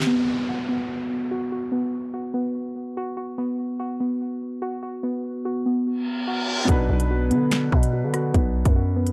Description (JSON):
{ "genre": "hip hop, drill", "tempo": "145 BPM", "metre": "4/4", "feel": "half-time", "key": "B minor", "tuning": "A4 = 440 Hz", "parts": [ { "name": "felt-muted upright piano", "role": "accompaniment", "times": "0.0-0.1, 6.7-9.1 s", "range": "B2 to B4", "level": "-30 LUFS", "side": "equal", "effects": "none" }, { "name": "muted felt-like synth keys", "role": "arpeggios", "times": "0.0-9.1 s", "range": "B3 to F#4", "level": "-28 LUFS", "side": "equal", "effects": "chorus, phaser, analog delay" }, { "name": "drill drum kit", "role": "drums", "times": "0.0-0.1, 6.7-9.1 s", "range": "finger snaps, hi-hat, kick drum, rim click, snare drum", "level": "-24 LUFS", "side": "equal", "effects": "none" }, { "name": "downlifter and reverse cymbal", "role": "sound effects", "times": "0.1-3.4, 6.0-6.7 s", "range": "none", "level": "-34 LUFS", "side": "equal", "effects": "none" }, { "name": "growling 808-style bass", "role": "bass", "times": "6.7-9.1 s", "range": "B1 to D3", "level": "-26 LUFS", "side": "equal", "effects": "none" } ], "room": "light reverb", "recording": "dry, gritty hardware recording", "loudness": "-25 LUFS", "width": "mono", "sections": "0.1-6.7 A section; 6.7-9.1 B section", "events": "reverse cymbal 6.0-6.7", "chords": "0.1 B5; 6.7 Bm" }